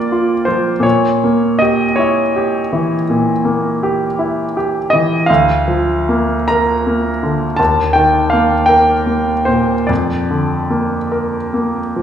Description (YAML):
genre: classical, romantic nocturne for solo piano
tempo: 46-57 BPM (dotted quarters)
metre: 12/8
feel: rubato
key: unclear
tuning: A4 = 440 Hz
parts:
  - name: clear grand piano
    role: solo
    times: 0.0-12.0 s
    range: D2 to Bb5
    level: -12 LUFS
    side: equal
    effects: none
room: wet recital hall reverb, RT60 1.4 s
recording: recorded in a church or concert hall, small room reverb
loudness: -12 LUFS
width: side -9 dB against mid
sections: 0.0-12.0 A section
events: none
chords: 0.0 Bb; 0.8 Bbdim7; 5.3 Bb/D; 7.6 Eb; 9.9 Bb/F